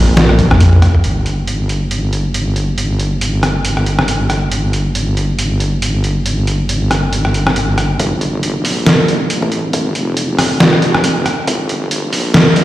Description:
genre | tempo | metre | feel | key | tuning
deep dubstep | 138 BPM | 4/4 | swing 57% on 16ths, half-time | G minor | A4 = 440 Hz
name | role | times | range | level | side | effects
wobble bass | bass | 0.0-12.6 s | F1 to Bb1 | -15 LUFS | equal | chorus, tube saturation, high-pass filter
trip hop sampler-style drum kit | drums | 0.2-12.6 s | hi-hat, rim click, snare drum, toms | -14 LUFS | equal | studio ambience
electronic kick drum | drums | 0.4-0.5, 8.0-11.6 s | none | -18 LUFS | equal | high-pass filter on kick, studio ambience, high-pass filter on room
room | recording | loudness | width
moderate lush hall reverb, RT60 2.3 s | played on a big sound system in a bare room, large studio reverb | -12 LUFS | side -15 dB against mid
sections
0.0-1.0 A section; 1.0-8.0 B section; 8.0-12.6 C section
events
drop 0.0-1.0; drum fill 0.2-1.0; build-up 8.0-12.6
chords
none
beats
0.17 0.61 | 1.04 1.48 1.91 2.35 | 2.78 3.21 3.65 4.08 | 4.52 4.95 5.39 5.82 | 6.26 6.69 7.13 7.56 | 8.00 8.43 8.87 9.30 | 9.74 10.17 10.61 11.04 | 11.48 11.91 12.35

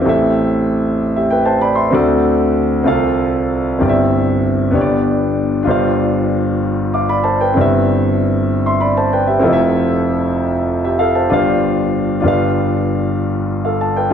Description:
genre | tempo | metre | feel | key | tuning
gospel | 64 BPM (dotted quarters) | 6/8 | straight | unclear | A4 = 441 Hz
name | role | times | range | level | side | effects
warm grand piano | solo | 0.0-14.1 s | F1 to D6 | -13 LUFS | equal | none
room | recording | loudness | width
moderate recital hall reverb, RT60 1.7 s | none | -13 LUFS | side -8 dB against mid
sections
0.0-5.7 A section; 5.7-14.1 A section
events
none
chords
0.1 Am7; 1.9 D7; 2.9 F/C; 3.8 C/G; 4.7 G; 5.7 G7sus4; 7.6 Cmaj7/G; 9.4 Fmaj7; 11.3 G7sus4; 12.2 G7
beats
| 0.06 0.99 | 1.93 2.87 | 3.80 4.74 | 5.68 6.62 | 7.55 8.49 | 9.43 10.37 | 11.31 12.24 | 13.18 14.12

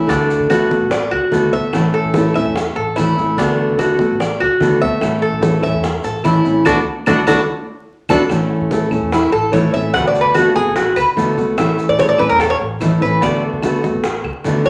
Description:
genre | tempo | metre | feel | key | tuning
latin, Cuban son and guajira | 146 BPM | 4/4 | straight | A major | A4 = 437 Hz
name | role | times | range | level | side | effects
fingerpicked steel-string acoustic guitar | accompaniment | 0.0-14.7 s | D3 to F#4 | -19 LUFS | equal | none
Cuban tres | arpeggios | 0.0-14.7 s | D4 to F#5 | -18 LUFS | equal | none
upright bass | bass | 0.0-14.7 s | A1 to D3 | -31 LUFS | equal | none
bongos | percussion | 0.1-14.7 s | none | -27 LUFS | equal | none
congas | percussion | 0.1-14.7 s | none | -29 LUFS | equal | none
maracas | percussion | 0.1-14.7 s | none | -41 LUFS | equal | none
claves | percussion | 0.5-14.5 s | none | -35 LUFS | equal | none
room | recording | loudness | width
wet large studio reverb, RT60 0.9 s | vinyl crackle | -16 LUFS | mono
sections
0.0-8.3 A section; 8.3-14.7 B section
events
band accent 6.7-8.3; Cuban tres solo 8.3-14.7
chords
0.1 D6; 1.7 A; 3.4 D6; 5.0 A; 6.7 D6; 8.3 A; 9.9 D6; 11.6 A; 13.2 D6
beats
| 0.09 0.50 0.91 1.32 | 1.73 2.14 2.55 2.96 | 3.38 3.79 4.20 4.61 | 5.02 5.43 5.84 6.25 | 6.66 7.07 7.48 7.89 | 8.30 8.71 9.12 9.53 | 9.94 10.35 10.76 11.17 | 11.58 11.99 12.40 12.81 | 13.22 13.63 14.04 14.45

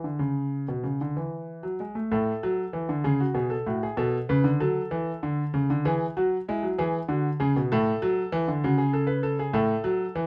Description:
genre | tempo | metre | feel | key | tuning
classical, baroque-style two-part invention for grand piano | 64 BPM (dotted quarters) | 12/8 | straight | A major | A4 = 442 Hz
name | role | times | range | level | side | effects
warm concert grand piano | solo | 0.0-10.3 s | A2 to B4 | -27 LUFS | equal | none
room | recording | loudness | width
light reverb | none | -27 LUFS | mono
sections
0.0-2.1 A section; 2.1-10.3 B section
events
none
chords
0.0 E; 2.1 N.C.; 4.0 Bm7; 5.9 E; 7.7 A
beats
0.21 1.16 | 2.11 3.05 3.98 4.92 | 5.86 6.79 7.71 8.64 | 9.56

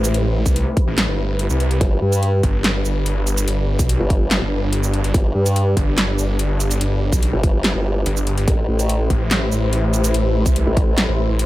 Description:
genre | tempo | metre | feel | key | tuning
heavy wobble dubstep | 144 BPM | 4/4 | half-time | unclear | A4 = 440 Hz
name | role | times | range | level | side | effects
dark symphonic string section | sustained chords | 0.0-11.5 s | A3 to C5 | -25 LUFS | left 1 dB | sidechain pumping, low-pass filter
snarling distorted saw bass | bass | 0.0-11.5 s | G1 to C2 | -19 LUFS | equal | distortion, overdrive
big-room dance drum kit | drums | 0.0-11.5 s | handclaps, hi-hat, shaker, snare drum | -22 LUFS | equal | none
electronic kick drum | drums | 0.5-10.9 s | none | -18 LUFS | equal | none
formant-sweep wobble bass | bass | 1.8-11.1 s | G1 to G2 | -18 LUFS | equal | chorus, overdrive
room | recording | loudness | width
digital ambience | none | -16 LUFS | side -16 dB against mid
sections
0.0-11.5 A section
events
kick drops out 7.6-8.5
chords
0.0 Am7; 1.8 G; 8.5 Am7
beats
| 0.14 0.56 0.98 1.39 | 1.81 2.23 2.64 3.06 | 3.48 3.89 4.31 4.73 | 5.14 5.56 5.98 6.39 | 6.81 7.23 7.64 8.06 | 8.48 8.89 9.31 9.73 | 10.14 10.56 10.98 11.39

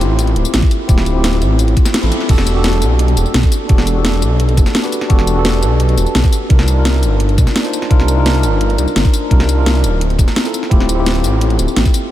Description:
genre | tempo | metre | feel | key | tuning
liquid drum and bass | 171 BPM | 4/4 | straight | E phrygian | A4 = 438 Hz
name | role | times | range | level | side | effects
tine electric piano | accompaniment | 0.0-12.1 s | C4 to C5 | -19 LUFS | equal | medium stereo tremolo, ping-pong delay
swelling detuned saw bass | bass | 0.0-11.8 s | D1 to C2 | -14 LUFS | equal | none
drum and bass drum kit | drums | 0.0-12.0 s | crash cymbal, hi-hat, snare drum, tambourine | -19 LUFS | equal | none
electronic kick drum | drums | 0.6-11.9 s | none | -12 LUFS | equal | none
room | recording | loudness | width
light reverb, digital ambience | none | -11 LUFS | side -13 dB against mid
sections
0.0-2.3 A section; 2.3-12.1 A section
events
drop 0.0-2.3, 2.3-12.1; band accent 1.9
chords
0.0 Dm11; 2.3 Em11; 6.5 Cm11; 10.0 Dm11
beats
0.19 0.54 | 0.89 1.24 1.59 1.94 | 2.29 2.64 2.99 3.35 | 3.70 4.05 4.40 4.75 | 5.10 5.45 5.80 6.15 | 6.50 6.85 7.21 7.56 | 7.91 8.26 8.61 8.96 | 9.31 9.66 10.01 10.36 | 10.71 11.06 11.41 11.77

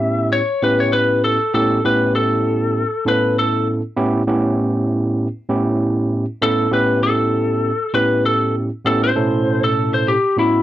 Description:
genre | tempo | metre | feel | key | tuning
blues | 98 BPM | 4/4 | swing 55% on 16ths | A mixolydian | A4 = 439 Hz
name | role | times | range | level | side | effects
lightly driven lead guitar | melody | 0.0-10.6 s | E4 to E5 | -18 LUFS | left 2 dB | slapback echo
overdriven tine electric piano | accompaniment | 0.0-10.6 s | A2 to A4 | -18 LUFS | right 1 dB | none
room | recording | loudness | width
light reverb | dry, close 1970s-style studio recording | -15 LUFS | side -13 dB against mid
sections
0.0-1.5 A section; 1.5-10.6 A section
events
lead electric guitar solo 0.0-1.5, 1.5-10.6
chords
0.0 A7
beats
0.32 0.93 | 1.53 2.14 2.75 3.36 | 3.97 4.58 5.19 5.80 | 6.41 7.02 7.63 8.24 | 8.85 9.46 10.07

